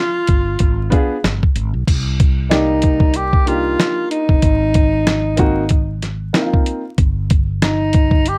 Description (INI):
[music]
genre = hip hop, jazz-hop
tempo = 94 BPM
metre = 4/4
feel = swing 57% on 16ths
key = C minor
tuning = A4 = 440 Hz
[part]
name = breathy tenor saxophone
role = melody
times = 0.0-8.4 s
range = Eb4 to G4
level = -21 LUFS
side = equal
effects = slapback echo
[part]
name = mellow fretless electric bass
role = bass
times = 0.3-8.4 s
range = F1 to C2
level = -23 LUFS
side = equal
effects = none
[part]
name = lo-fi sampler-style drum kit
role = drums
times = 0.3-8.4 s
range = crash cymbal, hi-hat, kick drum, snare drum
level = -17 LUFS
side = equal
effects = none
[part]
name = warm upright piano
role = accompaniment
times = 0.9-6.8 s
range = Bb3 to D5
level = -22 LUFS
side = equal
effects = none
[sound]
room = light reverb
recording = dark, warm production, vinyl crackle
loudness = -16 LUFS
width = mono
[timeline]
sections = 0.0-1.9 A section; 1.9-8.4 B section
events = none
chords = 0.0 G7b9; 1.9 Cm9; 4.4 Abadd9; 7.0 N.C.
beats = 0.60 1.24 | 1.87 2.51 3.15 3.79 | 4.43 5.07 5.70 6.34 | 6.98 7.62 8.26